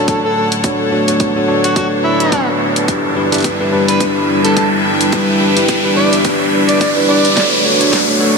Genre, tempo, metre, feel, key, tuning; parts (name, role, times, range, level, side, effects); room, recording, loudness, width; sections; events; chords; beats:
glitch hop; 107 BPM; 4/4; swing 57% on 16ths; E dorian; A4 = 440 Hz
overdriven harmonica; melody; 0.0-7.4 s; E4 to D5; -19 LUFS; right 1 dB; ping-pong delay
dark analog pad; sustained chords; 0.0-8.4 s; G3 to C#5; -18 LUFS; equal; chorus, vintage 12-bit sampler grit, sidechain pumping
bell-like tine electric piano; stabs; 0.0-8.4 s; D4 to C#5; -17 LUFS; left 2 dB; vintage 12-bit sampler grit, sidechain pumping, low-pass filter, ping-pong delay
riser; sound effects; 0.3-8.4 s; -18 LUFS; equal
bright studio string section; texture; 0.0-8.4 s; D4 to C#6; -21 LUFS; equal; sidechain pumping
electronic kick drum; drums; 0.1-8.1 s; -21 LUFS; equal; high-pass filter on kick, small room ambience
pop drum kit; drums; 0.1-8.1 s; hi-hat, snare drum; -20 LUFS; right 1 dB; small room ambience
wet cathedral reverb, RT60 5.0 s; dreamy mix soaked in reverb, high-pass filter; -11 LUFS; side -4 dB against mid
0.0-8.4 A section
build-up 0.0-8.4; filter sweep on tine electric piano 0.0-8.4; filter sweep 0.0-8.4; riser 0.3-8.4; drum fill 7.4-8.4
0.0 Dmaj7; 2.9 Em7; 7.4 Dmaj7
0.08 | 0.64 1.20 1.76 2.33 | 2.88 3.45 4.01 4.57 | 5.13 5.69 6.25 6.81 | 7.37 7.93